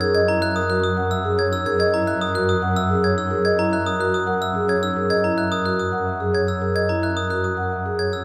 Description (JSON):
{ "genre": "classical, minimalist pattern music", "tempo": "109 BPM", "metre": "3/4", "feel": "straight", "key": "F# mixolydian", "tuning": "A4 = 440 Hz", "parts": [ { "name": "marimba with soft mallets", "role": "melody", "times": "0.0-8.2 s", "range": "A#4 to F#5", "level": "-27 LUFS", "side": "equal", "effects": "none" }, { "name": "glockenspiel with brass mallets", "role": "arpeggios", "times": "0.0-8.2 s", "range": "A#5 to G#6", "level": "-26 LUFS", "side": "equal", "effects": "none" }, { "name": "vibraphone with soft mallets", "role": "arpeggios", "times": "0.0-8.0 s", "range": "D#4 to A#4", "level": "-27 LUFS", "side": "equal", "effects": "none" }, { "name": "rich symphonic double bass section", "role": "bass", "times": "0.0-8.2 s", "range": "F#2", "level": "-28 LUFS", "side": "equal", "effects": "none" } ], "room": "wet recital hall reverb, RT60 1.5 s", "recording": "none", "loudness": "-21 LUFS", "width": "mono", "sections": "0.0-8.2 A section", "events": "none", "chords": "0.0 F#13" }